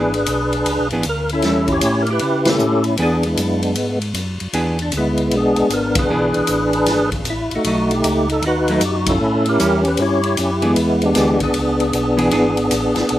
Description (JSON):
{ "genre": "soul jazz organ trio", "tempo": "154 BPM", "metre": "4/4", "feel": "swing 65% on 8ths", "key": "E mixolydian", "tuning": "A4 = 441 Hz", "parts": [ { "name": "percussive tonewheel organ", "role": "melody", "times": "0.0-13.2 s", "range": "G#3 to C#5", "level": "-17 LUFS", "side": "equal", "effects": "slow rotary speaker, overdrive, chorus vibrato, slapback echo" }, { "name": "hollow-body jazz guitar", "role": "accompaniment", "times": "0.0-12.6 s", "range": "E3 to G#4", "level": "-21 LUFS", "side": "right 1 dB", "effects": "slapback echo" }, { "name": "mellow tonewheel organ", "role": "bass", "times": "0.0-13.2 s", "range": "G#1 to C#3", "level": "-24 LUFS", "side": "equal", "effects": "overdrive, chorus vibrato, slow rotary speaker" }, { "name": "swinging big-band drum kit", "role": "drums", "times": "0.1-13.2 s", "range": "hi-hat, kick drum, ride cymbal, snare drum", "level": "-24 LUFS", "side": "left 1 dB", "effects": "none" } ], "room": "little or no reverb", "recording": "none", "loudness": "-15 LUFS", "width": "side -13 dB against mid", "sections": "0.0-13.2 A section", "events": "band accent 2.4, 5.9, 9.0", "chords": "0.0 E7; 1.4 A7; 3.0 E7; 7.7 B7; 9.2 A7; 10.8 E7" }